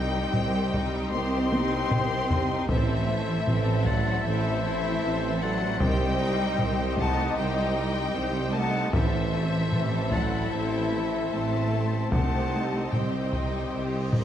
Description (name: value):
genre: cinematic, epic orchestral film score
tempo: 77 BPM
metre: 4/4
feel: straight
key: unclear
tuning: A4 = 440 Hz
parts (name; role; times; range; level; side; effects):
- warm symphonic violin section; melody; 0.0-14.2 s; E5 to C6; -34 LUFS; left 5 dB; none
- hollow silver concert flute; second line; 0.0-14.2 s; C5 to G5; -35 LUFS; left 2 dB; none
- rich symphonic violin section; second line; 0.0-14.2 s; Eb4 to Eb5; -38 LUFS; left 2 dB; none
- rich symphonic viola section; accompaniment; 0.0-14.2 s; C3 to Eb4; -35 LUFS; right 2 dB; none
- rich symphonic string section; sustained chords; 0.0-14.2 s; C4 to E5; -35 LUFS; equal; none
- warm French horn section; sustained chords; 0.0-14.2 s; C4 to E4; -35 LUFS; left 4 dB; none
- rich symphonic cello section; bass; 0.0-14.2 s; E3 to C4; -32 LUFS; equal; none
- rich symphonic double bass section; bass; 0.0-14.2 s; A1 to C2; -32 LUFS; right 2 dB; none
- warm tuba; bass; 0.0-14.2 s; A1 to C2; -32 LUFS; right 2 dB; none
- solo taiko drums; drums; 0.3-14.2 s; none; -29 LUFS; equal; none
- timpani; percussion; 8.9-10.1 s; A2; -35 LUFS; equal; none
- cymbal swell; sound effects; 13.9-14.2 s; none; -50 LUFS; equal; none
room: moderate scoring stage reverb, RT60 1.8 s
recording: none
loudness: -24 LUFS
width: side -10 dB against mid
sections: 0.0-14.2 A section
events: drum fill 1.5-2.7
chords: 0.0 Cm; 2.7 Am; 5.8 Cm; 8.9 Am; 12.1 Cm